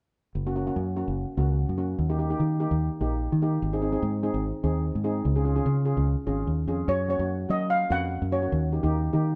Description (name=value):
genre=calypso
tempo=147 BPM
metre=4/4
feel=swing 54% on 16ths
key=F# major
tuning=A4 = 441 Hz
part: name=fingered electric bass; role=bass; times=0.3-9.4 s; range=F#1 to F#3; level=-28 LUFS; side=equal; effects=none
part: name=steel pan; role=accompaniment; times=0.5-9.4 s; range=A#3 to G#4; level=-32 LUFS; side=equal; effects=none
part: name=steel pan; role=melody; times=6.9-8.7 s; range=C#5 to F#5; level=-29 LUFS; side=equal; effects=none
room=moderate stone room reverb, RT60 1.0 s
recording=band playing live in one room, nothing above 10.7 kHz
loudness=-26 LUFS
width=mono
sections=0.4-6.9 A section; 6.9-9.4 B section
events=none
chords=0.4 F#; 2.0 D#; 3.6 G#; 5.2 C#; 6.9 F#maj7; 8.5 D#7